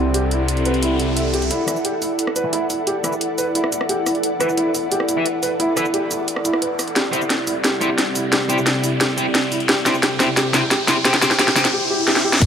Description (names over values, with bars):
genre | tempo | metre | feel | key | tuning
dark technical drum and bass | 176 BPM | 4/4 | straight | E minor | A4 = 440 Hz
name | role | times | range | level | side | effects
dark analog pad | sustained chords | 0.0-12.5 s | C4 to F#5 | -29 LUFS | right 1 dB | chorus, sidechain pumping
felt-muted upright piano | arpeggios | 0.0-12.3 s | E4 to E5 | -23 LUFS | right 1 dB | sidechain pumping, low-pass filter, digital delay
distorted electric guitar | stabs | 0.0-11.6 s | C4 to E5 | -25 LUFS | left 1 dB | distortion, low-pass filter, digital delay
wide detuned saw bass | bass | 0.0-1.5, 12.4-12.5 s | E1 to C2 | -22 LUFS | equal | chorus, overdrive, sidechain pumping
riser and swell | sound effects | 0.0-12.4 s | none | -27 LUFS | equal | none
ethereal airy pad | texture | 0.0-12.5 s | C3 to F#5 | -24 LUFS | equal | ensemble chorus, built-in reverb, tremolo, sidechain pumping
drum and bass drum kit | drums | 0.1-12.5 s | cabasa, crash cymbal, hi-hat, rim click, snare drum | -19 LUFS | equal | overdrive, high-pass filter on hats, high-pass filter on snare, high-pass filter on perc, high-pass filter on cymbals, high-pass filter on room
electronic hi-hat | drums | 12.4-12.5 s | none | barely audible | none | none
electronic kick drum | drums | 12.4-12.5 s | none | -12 LUFS | equal | none
room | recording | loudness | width
moderate plate reverb, RT60 2.2 s | dark, warm production | -16 LUFS | side -8 dB against mid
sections
0.0-1.5 A section; 1.5-12.4 B section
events
riser 0.0-1.5, 1.5-12.4; build-up 1.5-12.4; filter sweep on analog synth pad 1.5-12.4; filter sweep on felt piano 1.5-12.4; filter sweep on distorted electric guitar 1.5-12.4; drum fill 7.0-11.7, 12.1-12.4; swell 11.7-12.4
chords
0.0 C; 1.5 E7(no3); 7.0 C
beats
| 0.14 0.48 0.82 1.17 | 1.51 1.85 2.19 2.53 | 2.87 3.21 3.55 3.89 | 4.23 4.58 4.92 5.26 | 5.60 5.94 6.28 6.62 | 6.96 7.30 7.64 7.98 | 8.32 8.67 9.01 9.35 | 9.69 10.03 10.37 10.71 | 11.05 11.39 11.73 12.07 | 12.42